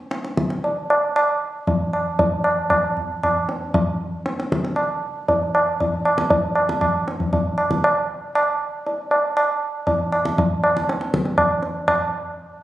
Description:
indian classical; 117 BPM; 4/4; straight
tabla; percussion; 0.1-12.1 s; -19 LUFS; equal
wet recital hall reverb, RT60 1.6 s; recorded on a phone in the room, studio reverb; -19 LUFS; side -14 dB against mid
0.0-11.9 A section
speeding up 0.0-12.6
0.10 0.63 1.15 | 1.67 2.19 2.71 3.23 | 3.74 4.26 4.77 5.29 | 5.80 6.31 6.82 7.33 | 7.84 8.35 8.86 9.36 | 9.87 10.37 10.88 11.38 | 11.88

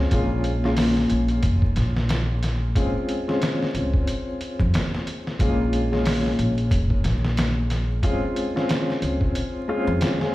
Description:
trip hop; 91 BPM; 4/4; swing 58% on 16ths; Bb minor; A4 = 440 Hz
dark upright piano; accompaniment; 0.0-10.3 s; Ab3 to F4; -25 LUFS; left 1 dB; tremolo, tape echo
upright bass; bass; 0.0-10.0 s; F1 to F2; -23 LUFS; equal
trip hop sampler-style drum kit; drums; 0.1-10.3 s; hi-hat, kick drum, snare drum; -25 LUFS; equal; studio reverb
small room ambience; played on a big sound system in a bare room, stone room reverb, vinyl crackle; -20 LUFS; side -17 dB against mid
0.0-10.3 A section
kick drops out 9.3-10.3
0.1 Bbm7; 2.8 Dbmaj7; 5.4 Bbm7; 8.0 Dbmaj7
| 0.12 0.78 1.44 2.10 | 2.75 3.41 4.07 4.73 | 5.39 6.05 6.71 7.37 | 8.03 8.69 9.35 10.01

